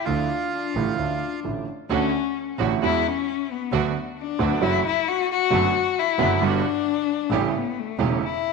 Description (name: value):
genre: tango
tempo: 133 BPM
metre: 4/4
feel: rubato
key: D major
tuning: A4 = 441 Hz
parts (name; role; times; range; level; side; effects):
- bandoneon; melody; 0.0-1.4 s; F4; -28 LUFS; right 5 dB; slapback echo
- dark cello; second line; 0.0-8.5 s; A3 to F#4; -24 LUFS; left 12 dB; slapback echo
- warm concert grand piano; accompaniment; 0.1-8.2 s; E1 to F#4; -26 LUFS; right 10 dB; none
- clear double bass; bass; 0.1-8.2 s; E1 to E2; -28 LUFS; right 1 dB; none
- clear studio string section; stabs; 1.9-8.2 s; G3 to G4; -32 LUFS; right 10 dB; slapback echo
room: moderate echo chamber reverb, RT60 2.1 s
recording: 1960s-style stereo with parts hard left and right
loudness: -21 LUFS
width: side -4 dB against mid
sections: 0.0-1.9 A section; 1.9-8.5 B section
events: cello solo 1.9-8.5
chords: 0.1 Dmadd9; 1.9 Dmaj7; 2.8 Eadd9; 3.7 Bm/D; 4.6 F#m7; 5.5 Bm7/F#; 6.4 Gmaj7; 7.3 A7